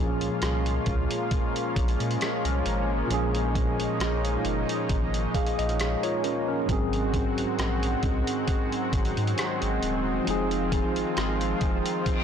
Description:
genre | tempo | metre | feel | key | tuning
contemporary R&B | 67 BPM | 4/4 | swing 54% on 16ths | Bb minor | A4 = 440 Hz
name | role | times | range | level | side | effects
tine electric piano | accompaniment | 0.0-12.2 s | Ab2 to F5 | -30 LUFS | right 1 dB | slow stereo tremolo
lush unison pad | sustained chords | 0.0-12.2 s | Eb3 to Gb4 | -29 LUFS | equal | chorus, sidechain pumping
warm sub bass | bass | 0.0-11.8 s | Eb1 to Bb2 | -30 LUFS | equal | none
dusty soul sampler-style drum kit | drums | 0.2-12.2 s | hi-hat, kick drum, rim click | -29 LUFS | equal | none
reverse cymbal | sound effects | 12.1-12.2 s | none | -31 LUFS | left 4 dB | none
room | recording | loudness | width
light reverb, digital ambience | blown-out, overdriven recording, overdrive | -24 LUFS | side -8 dB against mid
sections
0.0-12.2 A section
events
drum fill 12.1; reverse cymbal 12.1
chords
0.0 Bbm7; 6.7 Ab7; 10.3 Fm7

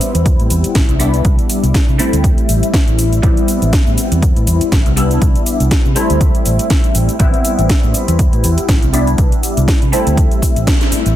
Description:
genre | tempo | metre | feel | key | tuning
filtered disco house | 121 BPM | 4/4 | swing 56% on 16ths | A minor | A4 = 440 Hz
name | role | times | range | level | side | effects
funky polysynth comp | accompaniment | 0.0-11.1 s | G3 to E4 | -17 LUFS | left 1 dB | chorus, phaser, sidechain pumping, low-pass filter
house drum kit | drums | 0.0-11.1 s | hi-hat, shaker, snare drum | -20 LUFS | equal | overdrive
vintage muted fingered electric bass | bass | 0.1-11.1 s | A1 to C3 | -16 LUFS | equal | sidechain pumping, low-pass filter
electronic kick drum | drums | 0.3-10.8 s | none | -14 LUFS | equal | none
room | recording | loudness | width
little or no reverb | dense, heavily limited modern master | -11 LUFS | side -12 dB against mid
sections
0.0-11.2 A section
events
band accent 10.7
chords
0.0 Am7; 1.0 Cmaj7; 2.0 D7sus4; 3.2 Am7; 5.0 Cmaj7; 6.0 D7sus4; 7.2 Am7; 8.9 Cmaj7; 9.9 D7sus4

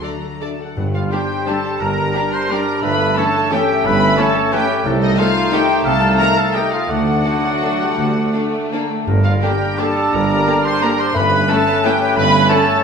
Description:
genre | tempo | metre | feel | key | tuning
classical, orchestral ballroom waltz | 153-194 BPM | 3/4 | rubato | G minor | A4 = 441 Hz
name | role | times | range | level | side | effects
rich symphonic violin section | melody | 0.0-12.8 s | Eb5 to C6 | -23 LUFS | left 1 dB | none
rich symphonic violin section | second line | 0.0-12.6 s | C#4 to D5 | -28 LUFS | left 1 dB | none
rich symphonic viola section | accompaniment | 0.0-12.6 s | D3 to A4 | -26 LUFS | right 1 dB | none
dark French horn section | sustained chords | 0.0-12.6 s | G3 to Eb4 | -28 LUFS | left 3 dB | none
concert harp | arpeggios | 0.0-12.8 s | G2 to A5 | -26 LUFS | left 10 dB | none
rich symphonic cello section | bass | 0.0-12.4 s | C2 to F#3 | -24 LUFS | right 2 dB | none
warm clarinet | second line | 0.8-12.8 s | C#4 to Eb4 | -26 LUFS | left 1 dB | none
warm bassoon | accompaniment | 0.8-12.8 s | G3 to A3 | -24 LUFS | equal | none
rich symphonic double bass section | bass | 0.8-12.4 s | G1 to D2 | -26 LUFS | right 3 dB | none
warm tuba | bass | 0.8-12.4 s | G1 to D2 | -26 LUFS | right 4 dB | none
timpani | percussion | 0.8-1.3, 9.1-11.6 s | G2 | -24 LUFS | equal | none
warm trumpet section | stabs | 0.9-12.8 s | Eb4 to C5 | -21 LUFS | right 1 dB | none
concert flute | second line | 1.0-12.8 s | Eb5 to C6 | -24 LUFS | left 2 dB | none
clear oboe | second line | 1.1-12.8 s | A4 to F5 | -25 LUFS | right 2 dB | none
room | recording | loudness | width
wet scoring stage reverb, RT60 1.6 s | minimal, uncompressed stereo recording | -14 LUFS | side -6 dB against mid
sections
0.8-12.8 A section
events
none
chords
0.0 D; 0.8 Gm; 2.8 A7/G; 4.9 Adim/C; 6.9 D; 9.1 Gm; 11.1 A7/G

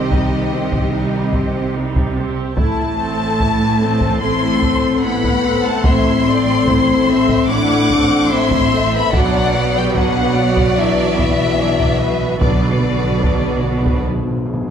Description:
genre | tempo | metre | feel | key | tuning
cinematic, epic orchestral film score | 73 BPM | 4/4 | straight | unclear | A4 = 440 Hz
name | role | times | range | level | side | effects
warm studio violin section | melody | 0.0-14.0 s | D5 to D6 | -21 LUFS | left 4 dB | none
warm symphonic violin section | second line | 0.0-14.0 s | G4 to F#5 | -24 LUFS | left 2 dB | none
rich studio viola section | accompaniment | 0.0-14.1 s | F#3 to A4 | -22 LUFS | right 3 dB | none
mellow French horn section | sustained chords | 0.0-14.1 s | D3 to D4 | -19 LUFS | left 4 dB | none
rich symphonic cello section | bass | 0.0-14.0 s | A2 to C3 | -23 LUFS | right 2 dB | none
warm symphonic double bass section | bass | 0.0-14.0 s | A1 to C2 | -24 LUFS | right 4 dB | none
taiko ensemble | drums | 0.1-14.1 s | none | -21 LUFS | equal | none
timpani | percussion | 9.1-14.7 s | B2 | -25 LUFS | equal | none
room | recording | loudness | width
wet scoring stage reverb, RT60 1.6 s | none | -13 LUFS | side -8 dB against mid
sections
0.0-14.7 A section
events
timpani fill 9.1-14.7; break 14.1-14.7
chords
0.0 Cm; 2.6 Am; 9.1 Bm

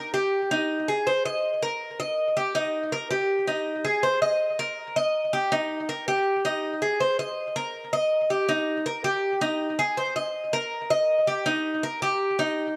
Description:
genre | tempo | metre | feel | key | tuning
latin | 162 BPM | 4/4 | straight | Eb major | A4 = 441 Hz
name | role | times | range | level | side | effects
Cuban tres | solo | 0.0-12.7 s | Eb4 to Eb5 | -26 LUFS | equal | analog delay
room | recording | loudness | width
moderate spring reverb, RT60 1.9 s, small room ambience | dark, warm production | -26 LUFS | mono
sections
0.0-8.5 A section; 8.5-12.8 A section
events
none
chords
none

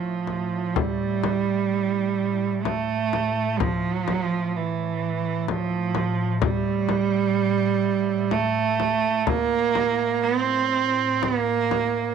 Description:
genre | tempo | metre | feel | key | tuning
caucasian folk, Caucasian lament | 63 BPM | 3/4 | rubato | A phrygian | A4 = 442 Hz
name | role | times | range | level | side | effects
rich cello | melody | 0.0-12.1 s | E3 to C4 | -22 LUFS | right 7 dB | none
soft additive organ-like pad | drone | 0.0-12.1 s | A2 | -31 LUFS | left 2 dB | ensemble chorus, built-in reverb
frame drum | percussion | 0.3-11.9 s | none | -27 LUFS | left 8 dB | none
room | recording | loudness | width
light reverb, small room ambience | 1960s-style stereo with parts hard left and right | -21 LUFS | side -6 dB against mid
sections
0.8-12.1 A section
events
none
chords
none

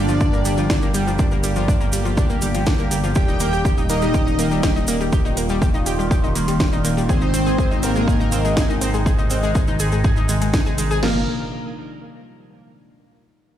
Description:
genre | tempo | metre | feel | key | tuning
melodic techno | 122 BPM | 4/4 | straight | G phrygian | A4 = 440 Hz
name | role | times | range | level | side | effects
wide unison lead | melody | 0.0-11.2 s | Bb3 to G4 | -25 LUFS | equal | sidechain pumping, digital delay
soft supersaw | second line | 0.0-11.2 s | Bb4 to G5 | -32 LUFS | right 1 dB | sidechain pumping, ping-pong delay
sweeping resonant pad | sustained chords | 0.0-11.3 s | Bb2 to G4 | -26 LUFS | left 1 dB | chorus, phaser, sidechain pumping
analog pluck | arpeggios | 0.0-11.3 s | F3 to Ab4 | -25 LUFS | equal | chorus, sidechain pumping, ping-pong delay
dark detuned saw bass | bass | 0.0-11.3 s | Eb1 to Ab1 | -22 LUFS | equal | tube saturation, sidechain pumping
tube shaker | percussion | 0.1-11.0 s | none | -32 LUFS | right 2 dB | none
techno drum kit | drums | 0.2-11.1 s | crash cymbal, kick drum, snare drum | -20 LUFS | equal | overdrive, small room reverb
techno drum kit | drums | 0.5-10.9 s | hi-hat, snare drum | -27 LUFS | equal | overdrive, small room reverb
room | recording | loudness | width
light reverb, digital ambience | played on a big sound system in a bare room, stone room reverb | -16 LUFS | side -11 dB against mid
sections
0.0-11.0 A section; 11.0-13.0 B section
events
drop 0.0-11.0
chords
0.0 Gm7; 3.2 Eb; 7.1 Ab; 11.0 Gm7

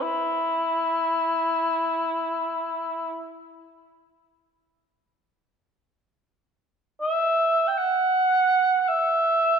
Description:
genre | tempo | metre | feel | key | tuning
world meditative, free-time meditation music | free time | none | none | unclear | A4 = 440 Hz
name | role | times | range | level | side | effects
mellow cor anglais | solo | 0.0-9.6 s | E4 to G5 | -21 LUFS | right 1 dB | ping-pong delay
room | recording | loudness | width
wet scoring stage reverb, RT60 1.9 s, studio ambience | dark, warm production | -21 LUFS | side -6 dB against mid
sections
0.0-5.7 A section; 5.7-9.6 A section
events
none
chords
none

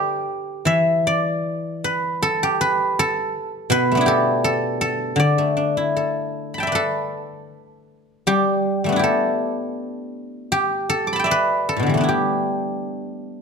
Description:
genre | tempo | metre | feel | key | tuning
chinese traditional, Chinese solo plucked strings | 75-86 BPM | 2/4 | rubato | D zhi mode | A4 = 440 Hz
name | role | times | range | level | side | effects
guzheng | solo | 0.0-13.4 s | A2 to D6 | -19 LUFS | equal | none
room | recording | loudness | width
light reverb | close, detailed microphones | -18 LUFS | side -5 dB against mid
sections
0.0-6.7 A section; 6.7-13.4 B section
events
none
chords
none

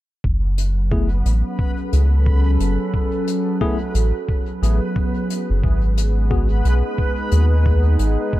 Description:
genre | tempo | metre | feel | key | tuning
ambient dub | 89 BPM | 4/4 | swing 60% on 16ths | F# dorian | A4 = 440 Hz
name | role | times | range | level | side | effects
warbly tape-like pad | sustained chords | 0.2-8.4 s | F#3 to B4 | -25 LUFS | right 1 dB | chorus, built-in reverb
soft dub sub bass | bass | 0.2-8.2 s | F#1 to D#2 | -16 LUFS | equal | tube saturation
electronic kick drum | drums | 0.2-8.4 s | none | -22 LUFS | equal | none
backwards swelling texture | texture | 0.9-8.4 s | B3 to B4 | -29 LUFS | equal | built-in reverb
hi-hat | drums | 0.6-8.2 s | none | -35 LUFS | left 5 dB | dub echo
tine electric piano | stabs | 0.9-6.5 s | A3 to G#4 | -28 LUFS | left 4 dB | fast stereo tremolo, dub echo
room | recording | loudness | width
digital ambience | echo-heavy mix | -16 LUFS | side -15 dB against mid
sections
0.2-8.4 A section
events
none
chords
0.2 F#madd9; 5.6 G#m

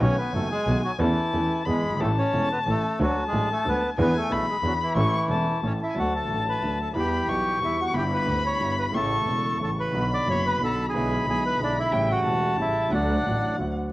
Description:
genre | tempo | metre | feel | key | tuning
tango | 181 BPM | 3/4 | rubato | A major, D major from 6.0 s | A4 = 440 Hz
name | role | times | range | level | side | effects
bandoneon | melody | 0.0-13.6 s | E3 to D6 | -27 LUFS | right 1 dB | none
warm violin | second line | 0.0-13.8 s | F#5 to C#6 | -28 LUFS | left 3 dB | cassette tape
clear concert grand piano | accompaniment | 0.0-13.9 s | E1 to A4 | -28 LUFS | right 1 dB | cassette tape
warm double bass | bass | 0.0-13.9 s | E1 to E2 | -28 LUFS | equal | none
room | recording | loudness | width
moderate spring reverb, RT60 2.7 s | home recording on cassette, vinyl crackle | -22 LUFS | side -17 dB against mid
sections
0.0-6.0 A section; 6.0-13.9 B section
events
none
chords
0.0 B7; 1.0 A/E; 1.7 E; 2.0 A; 3.0 D; 4.0 E7; 5.0 A; 6.0 D; 7.0 Em; 7.9 G6; 8.9 A; 9.9 Bm; 10.9 E7/B; 11.9 A7; 12.9 D

